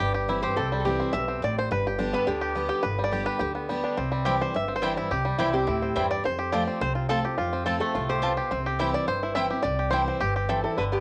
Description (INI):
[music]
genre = bluegrass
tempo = 212 BPM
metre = 4/4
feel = straight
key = C major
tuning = A4 = 440 Hz
[part]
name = bluegrass banjo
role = melody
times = 0.0-11.0 s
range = D3 to E5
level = -30 LUFS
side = equal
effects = none
[part]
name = picked steel-string acoustic guitar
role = accompaniment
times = 0.0-11.0 s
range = F2 to G4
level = -34 LUFS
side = equal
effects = cassette tape
[part]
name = upright bass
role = bass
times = 0.0-11.0 s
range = G1 to F2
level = -35 LUFS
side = equal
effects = none
[part]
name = lap resonator guitar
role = second line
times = 0.4-2.6, 5.4-8.6, 10.6-11.0 s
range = E4 to C5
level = -32 LUFS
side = equal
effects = cassette tape
[part]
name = mandolin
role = stabs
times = 4.2-10.6 s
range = C4 to A5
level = -31 LUFS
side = equal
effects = cassette tape, plate reverb
[sound]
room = moderate small room reverb, RT60 0.5 s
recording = home recording on cassette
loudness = -26 LUFS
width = mono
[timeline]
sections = 0.0-11.0 A section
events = five-string banjo solo 0.0-11.0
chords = 0.0 C; 1.7 G; 4.0 C; 6.2 F; 8.5 C